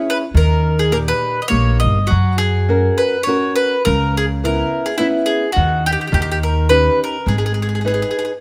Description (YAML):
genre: italian folk, Italian serenade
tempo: 104 BPM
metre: 3/4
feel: swing 54% on 8ths, rubato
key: unclear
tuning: A4 = 440 Hz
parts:
  - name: nylon-string guitar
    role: accompaniment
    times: 0.0-8.3 s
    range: A#2 to B4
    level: -23 LUFS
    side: equal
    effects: none
  - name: mandolin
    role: melody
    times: 0.1-8.3 s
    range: E4 to D#5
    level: -21 LUFS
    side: equal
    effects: none
  - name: upright bass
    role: bass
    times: 0.3-8.0 s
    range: G1 to F#2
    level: -19 LUFS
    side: equal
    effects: none
room: light reverb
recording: close, detailed microphones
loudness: -17 LUFS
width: mono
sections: 0.0-8.4 A section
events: none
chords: 0.3 D#; 2.1 F#; 3.9 C#m7; 5.6 D#m; 6.1 D#7; 7.3 G#m